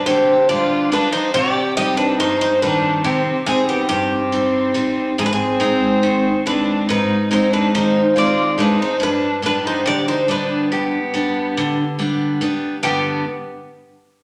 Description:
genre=greek folk, Greek bouzouki band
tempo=141 BPM (eighths)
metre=9/8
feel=straight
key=unclear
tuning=A4 = 440 Hz
part: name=Greek bouzouki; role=melody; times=0.0-13.2 s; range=G4 to Eb5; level=-22 LUFS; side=equal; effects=none
part: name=warm violin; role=second line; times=0.0-13.2 s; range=B3 to G4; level=-23 LUFS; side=equal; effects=none
part: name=picked steel-string acoustic guitar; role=accompaniment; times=0.0-13.2 s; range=G2 to Eb4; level=-22 LUFS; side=equal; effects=none
room=wet large studio reverb, RT60 1.2 s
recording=none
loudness=-18 LUFS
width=mono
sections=0.0-12.8 A section; 12.8-14.2 B section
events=none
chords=0.0 G; 1.4 Cm; 5.2 Ab; 9.0 G

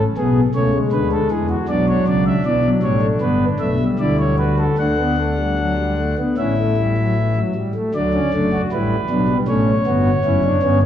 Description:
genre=classical, baroque-style 4-part fugue for pipe organ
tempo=78 BPM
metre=4/4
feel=straight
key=D major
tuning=A4 = 441 Hz
part: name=pipe organ, principal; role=solo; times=0.0-10.9 s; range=F#1 to F#5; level=-16 LUFS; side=equal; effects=none
room=wet concert hall reverb, RT60 2.5 s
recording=worn, warbling old tape, cassette tape, warbly pitch drift, small room ambience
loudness=-16 LUFS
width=side -10 dB against mid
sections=0.0-7.9 A section; 7.9-10.9 B section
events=none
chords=0.2 G#dim/B; 1.7 Bm; 3.2 Em7/G; 4.8 Asus4/D; 6.4 A5; 7.9 D

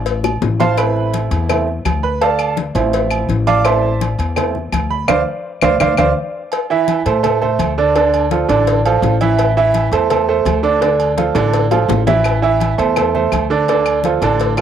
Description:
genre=latin, salsa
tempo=168 BPM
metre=4/4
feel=straight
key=A minor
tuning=A4 = 440 Hz
part: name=upright bass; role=bass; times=0.0-14.6 s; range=A1 to A2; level=-19 LUFS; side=left 2 dB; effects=none
part: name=agogo bells and timbales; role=percussion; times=0.1-14.6 s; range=none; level=-26 LUFS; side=right 6 dB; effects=none
part: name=congas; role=percussion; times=0.1-14.6 s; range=none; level=-26 LUFS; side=left 11 dB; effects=none
part: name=cowbell and bongos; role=percussion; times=0.1-14.6 s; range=none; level=-23 LUFS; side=left 11 dB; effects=none
part: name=claves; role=percussion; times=0.2-6.1, 12.2-14.6 s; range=none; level=-25 LUFS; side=left 11 dB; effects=none
part: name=bright upright piano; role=accompaniment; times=0.6-14.6 s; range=D3 to D6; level=-15 LUFS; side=right 5 dB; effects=cassette tape
room=moderate spring reverb, RT60 1.8 s, studio ambience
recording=home recording on cassette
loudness=-13 LUFS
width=side -9 dB against mid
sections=0.0-6.5 A section; 6.5-14.6 B section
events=upright piano solo 0.0-6.5; drum fill 0.2-0.8, 5.1-6.5, 10.8-12.2; band accent 5.1-6.5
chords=0.0 Dm7 (rootless); 0.8 Am; 2.2 Dm7; 3.6 Am; 5.1 Dm7; 6.5 Am; 8.0 Dm; 9.4 Am; 10.8 Dm; 12.2 Am; 13.7 Dm

